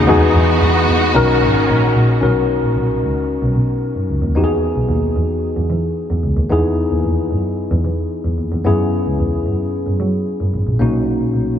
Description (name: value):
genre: pop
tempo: 112 BPM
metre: 4/4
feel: straight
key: B major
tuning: A4 = 441 Hz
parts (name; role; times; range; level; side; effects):
- tine electric piano; accompaniment; 0.0-11.6 s; A#3 to A#4; -18 LUFS; left 2 dB; lush chorus
- warm studio string section; sustained chords; 0.0-2.2 s; D#3 to F#4; -20 LUFS; right 1 dB; none
- dark double bass; bass; 0.0-11.5 s; G#1 to F#3; -17 LUFS; right 1 dB; none
room: moderate cathedral reverb, RT60 6.0 s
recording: dreamy mix soaked in reverb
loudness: -14 LUFS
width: side -9 dB against mid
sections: 0.0-2.2 A section; 2.2-11.6 B section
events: none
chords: 0.1 Emaj9; 1.1 Bmaj9; 2.2 Bmaj7; 4.4 Emaj7; 6.5 Emaj7/D#; 8.7 F#9sus4; 10.8 Bmaj7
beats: | 0.08 0.61 1.15 1.68 | 2.22 2.75 3.29 3.83 | 4.36 4.90 5.44 5.97 | 6.51 7.05 7.58 8.12 | 8.66 9.20 9.73 10.27 | 10.81 11.35